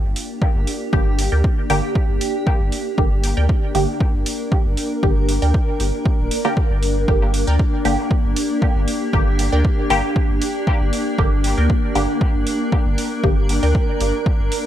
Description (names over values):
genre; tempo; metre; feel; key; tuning
dub techno; 117 BPM; 4/4; straight; G minor; A4 = 440 Hz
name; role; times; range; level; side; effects
granular cloud pad; sustained chords; 0.1-14.7 s; Bb3 to Bb4; -23 LUFS; equal; built-in reverb, sidechain pumping
warm sub bass; bass; 0.0-14.5 s; D1 to D2; -20 LUFS; equal; tube saturation, sidechain pumping
electronic hi-hat; drums; 0.2-14.6 s; none; -29 LUFS; right 2 dB; none
electronic kick drum; drums; 0.4-14.4 s; none; -18 LUFS; equal; overdrive
filtered dub chord stab; stabs; 0.9-14.0 s; D3 to G4; -24 LUFS; equal; chorus, phaser, sidechain pumping, dub echo
filtered dub chord stab; riff; 1.3-13.8 s; Bb4 to G5; -30 LUFS; right 3 dB; phaser, cassette tape, sidechain pumping, dub echo
room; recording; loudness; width
digital ambience; none; -16 LUFS; side -11 dB against mid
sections
0.0-14.7 A section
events
none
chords
0.0 Gm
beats
0.42 | 0.93 1.44 1.95 2.47 | 2.98 3.49 4.00 4.52 | 5.03 5.54 6.06 6.57 | 7.08 7.59 8.11 8.62 | 9.13 9.65 10.16 10.67 | 11.19 11.70 12.21 12.72 | 13.24 13.75 14.26